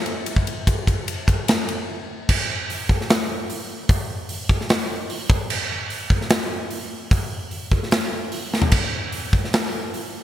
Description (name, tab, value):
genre	rock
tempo	149 BPM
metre	4/4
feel	straight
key	none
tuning	none
part	big rock drum kit	drums	0.1-10.0 s	crash cymbal, hi-hat, kick drum, ride cymbal, snare drum, splash cymbal, toms	-20 LUFS	equal	none
room	light reverb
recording	bright 1980s-style digital production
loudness	-20 LUFS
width	side -12 dB against mid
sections	0.0-2.3 A section; 2.3-10.2 B section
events	break 1.9-2.3; drum fill 8.5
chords	none